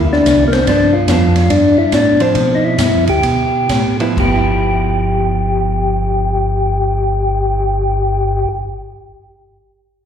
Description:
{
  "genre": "soul jazz organ trio",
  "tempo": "124-146 BPM",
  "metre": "4/4",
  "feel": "swing 65% on 8ths",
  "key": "G mixolydian",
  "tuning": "A4 = 440 Hz",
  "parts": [
    { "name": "hollow-body jazz guitar", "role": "accompaniment", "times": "0.0-8.7 s", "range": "F3 to E4", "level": "-21 LUFS", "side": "right 4 dB", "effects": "plate reverb, slapback echo" },
    { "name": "mellow tonewheel organ", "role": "bass", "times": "0.0-8.5 s", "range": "G1 to B2", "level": "-17 LUFS", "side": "equal", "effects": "slow rotary speaker" },
    { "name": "percussive tonewheel organ", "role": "melody", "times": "0.1-8.5 s", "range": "Bb3 to G4", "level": "-15 LUFS", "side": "left 2 dB", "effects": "slow rotary speaker, plate reverb, slapback echo" },
    { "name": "open jazz drum kit", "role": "drums", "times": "0.1-4.3 s", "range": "crash cymbal, hi-hat, kick drum, ride cymbal, snare drum", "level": "-20 LUFS", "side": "right 1 dB", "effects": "none" }
  ],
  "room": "moderate club reverb, RT60 0.7 s",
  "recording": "live gig heard through the venue's PA, recital hall reverb",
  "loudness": "-12 LUFS",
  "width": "side -8 dB against mid",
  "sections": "0.0-4.2 A section; 4.2-8.0 B section",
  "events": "slowing down 0.7-4.2",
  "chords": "0.0 C7; 0.7 G7; 4.2 G6",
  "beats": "0.27 | 0.68 1.09 1.50 1.93 | 2.35 2.79 3.24 3.70 | 4.17 4.66 5.14 5.62 | 6.11 6.59 7.07 7.56"
}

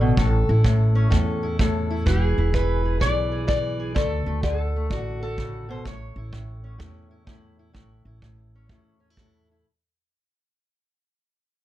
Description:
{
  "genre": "acoustic country blues, solo or duo",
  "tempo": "126 BPM",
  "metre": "4/4",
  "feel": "swing 66% on 8ths",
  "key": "A major",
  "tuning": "A4 = 440 Hz",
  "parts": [
    { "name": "fingerpicked steel-string acoustic guitar", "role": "melody", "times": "0.0-9.6 s", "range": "A2 to D5", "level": "-25 LUFS", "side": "left 1 dB", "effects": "none" },
    { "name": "upright bass", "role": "bass", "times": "0.0-9.6 s", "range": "E1 to E2", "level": "-23 LUFS", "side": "equal", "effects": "none" },
    { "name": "kick drum", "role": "drums", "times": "0.2-9.3 s", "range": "none", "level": "-26 LUFS", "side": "right 1 dB", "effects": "none" }
  ],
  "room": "little or no reverb",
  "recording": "close, detailed microphones",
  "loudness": "-20 LUFS",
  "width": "side -14 dB against mid",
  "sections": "0.0-9.7 A section",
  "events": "fade-out 0.0-9.7",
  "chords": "0.2 A; 2.1 E; 4.0 D; 5.9 A",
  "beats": "| 0.18 0.65 1.12 1.59 | 2.07 2.54 3.01 3.48 | 3.96 4.43 4.91 5.38 | 5.86 6.33 6.81 7.28 | 7.76 8.23 8.71 9.18"
}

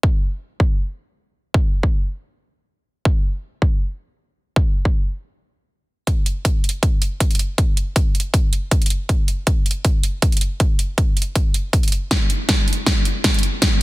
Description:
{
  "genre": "future bass",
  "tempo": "159 BPM",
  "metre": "4/4",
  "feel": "swing 54% on 16ths, half-time",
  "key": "none",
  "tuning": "none",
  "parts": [
    { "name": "electronic kick drum", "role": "drums", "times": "0.0-13.7 s", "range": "none", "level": "-17 LUFS", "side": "equal", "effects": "none" },
    { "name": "dubstep drum kit", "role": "drums", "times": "6.1-13.7 s", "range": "hi-hat, snare drum", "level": "-21 LUFS", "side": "right 1 dB", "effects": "low-pass filter on hats, low-pass filter on snare" }
  ],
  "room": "digital ambience",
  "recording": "dense, heavily limited modern master",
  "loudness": "-17 LUFS",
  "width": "side -19 dB against mid",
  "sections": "0.0-6.1 A section; 6.1-13.8 B section",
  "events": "build-up 6.1-13.8; drum fill 12.1-13.8",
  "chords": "none",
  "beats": "| 0.04 0.41 0.79 1.17 | 1.54 1.92 2.30 2.68 | 3.06 3.43 3.81 4.19 | 4.56 4.94 5.32 5.70 | 6.07 6.45 6.83 7.21 | 7.58 7.96 8.34 8.71 | 9.09 9.47 9.85 10.22 | 10.60 10.98 11.36 11.73 | 12.11 12.49 12.87 13.24 | 13.62"
}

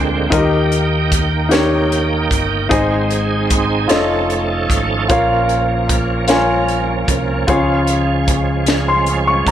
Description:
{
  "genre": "slow gospel",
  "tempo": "50 BPM (dotted quarters)",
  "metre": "6/8",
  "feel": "straight",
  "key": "unclear",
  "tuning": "A4 = 438 Hz",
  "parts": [
    { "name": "warm baby grand piano", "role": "accompaniment", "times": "0.0-9.5 s", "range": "Ab2 to Db6", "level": "-17 LUFS", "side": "left 2 dB", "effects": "none" },
    { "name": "bright tonewheel organ", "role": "sustained chords", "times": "0.0-9.5 s", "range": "D3 to G5", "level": "-20 LUFS", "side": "right 5 dB", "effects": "fast rotary speaker, overdrive, chorus vibrato" },
    { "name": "fingered electric bass", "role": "bass", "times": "0.0-9.5 s", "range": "F1 to Eb2", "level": "-21 LUFS", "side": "equal", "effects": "none" },
    { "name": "crisp fusion drum kit", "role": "drums", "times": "0.3-9.5 s", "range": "hi-hat, kick drum, snare drum", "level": "-19 LUFS", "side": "equal", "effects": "none" }
  ],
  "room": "light reverb, small room ambience",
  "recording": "none",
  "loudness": "-13 LUFS",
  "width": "side -10 dB against mid",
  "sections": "0.0-9.5 A section",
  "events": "none",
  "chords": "0.3 Eb; 2.7 Ab; 3.9 F7alt; 5.1 Bbm; 7.5 Db",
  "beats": "| 0.32 1.51 | 2.71 3.90 | 5.10 6.29 | 7.48 8.67"
}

